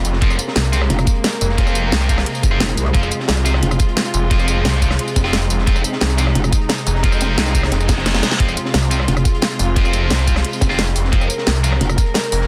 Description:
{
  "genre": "dark technical drum and bass",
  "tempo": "176 BPM",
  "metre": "4/4",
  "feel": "straight",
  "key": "F minor",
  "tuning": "A4 = 440 Hz",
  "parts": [
    { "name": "dark studio string section", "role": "sustained chords", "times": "0.0-12.5 s", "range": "C3 to Bb4", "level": "-26 LUFS", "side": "equal", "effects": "sidechain pumping" },
    { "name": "snarling distorted saw bass", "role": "bass", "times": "0.0-12.5 s", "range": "F1 to C2", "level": "-21 LUFS", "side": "equal", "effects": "distortion, overdrive" },
    { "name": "crunchy breakbeat drum kit", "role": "drums", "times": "0.0-12.5 s", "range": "hi-hat, snare drum", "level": "-32 LUFS", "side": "equal", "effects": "none" },
    { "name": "dubstep drum kit", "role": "drums", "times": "0.0-12.4 s", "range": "hi-hat, rim click, snare drum, tambourine", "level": "-23 LUFS", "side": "equal", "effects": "none" },
    { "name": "heavy high-gain guitar", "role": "stabs", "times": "0.2-11.7 s", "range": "F3 to F4", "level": "-27 LUFS", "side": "equal", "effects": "distortion, delay" },
    { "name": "electronic kick drum", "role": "drums", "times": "0.2-12.0 s", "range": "none", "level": "-19 LUFS", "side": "equal", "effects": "none" },
    { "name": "metallic wobble bass", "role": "bass", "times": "0.9-3.8, 6.4-6.5, 9.1-9.2, 11.8-12.0 s", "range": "F1 to C2", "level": "-20 LUFS", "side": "equal", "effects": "chorus, tube saturation" },
    { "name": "reverse cymbal", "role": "sound effects", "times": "7.8-8.4 s", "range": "none", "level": "-26 LUFS", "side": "equal", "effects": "none" }
  ],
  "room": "little or no reverb",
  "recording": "dense, heavily limited modern master",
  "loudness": "-17 LUFS",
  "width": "mono",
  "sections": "0.0-12.5 A section",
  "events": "reverse cymbal 7.9-8.4; drum fill 7.9-8.4",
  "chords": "0.0 Fm",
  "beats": "| 0.22 0.56 0.90 1.24 | 1.58 1.92 2.26 2.60 | 2.94 3.29 3.63 3.97 | 4.31 4.65 4.99 5.33 | 5.67 6.01 6.35 6.70 | 7.04 7.38 7.72 8.06 | 8.40 8.74 9.08 9.42 | 9.76 10.10 10.45 10.79 | 11.13 11.47 11.81 12.15"
}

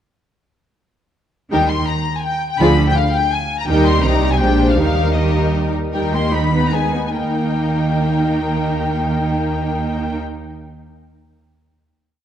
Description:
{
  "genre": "quick classical-period movement for string orchestra",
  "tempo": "139-168 BPM",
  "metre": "3/4",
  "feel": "straight",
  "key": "Eb major",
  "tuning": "A4 = 440 Hz",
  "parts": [
    { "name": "warm symphonic violin section", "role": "melody", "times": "1.5-10.2 s", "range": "Eb5 to C6", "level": "-22 LUFS", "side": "left 4 dB", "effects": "none" },
    { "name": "warm symphonic violin section", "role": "second line", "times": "1.5-10.2 s", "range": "Cb4 to Eb5", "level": "-24 LUFS", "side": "left 4 dB", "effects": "none" },
    { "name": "rich symphonic viola section", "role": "accompaniment", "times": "1.5-10.2 s", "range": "F3 to G4", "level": "-21 LUFS", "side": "right 1 dB", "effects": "none" },
    { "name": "clear symphonic cello section", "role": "bass", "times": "1.5-10.2 s", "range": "Bb2 to Eb3", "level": "-22 LUFS", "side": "right 2 dB", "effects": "none" },
    { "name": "rich symphonic double bass section", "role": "bass", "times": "1.5-10.2 s", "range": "Bb1 to Eb2", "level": "-21 LUFS", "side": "right 2 dB", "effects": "none" }
  ],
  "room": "wet scoring stage reverb, RT60 1.9 s",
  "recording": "dark, warm production",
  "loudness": "-15 LUFS",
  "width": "side -10 dB against mid",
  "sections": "1.5-5.9 A section; 5.9-7.2 coda; 7.2-9.7 final chord",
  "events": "slowing down 4.2-7.2",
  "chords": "1.5 Eb; 2.6 Ddim; 3.7 Eb; 4.0 Cm; 4.4 Bb13; 4.8 Eb; 6.5 Abm/Eb; 7.2 Eb",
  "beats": "| 1.52 1.88 2.25 | 2.61 2.97 3.32 | 3.68 4.04 4.41 | 4.78 5.16 5.54 | 5.93 6.33 6.73 | 7.16 7.58 8.01 | 8.44 8.87 9.30"
}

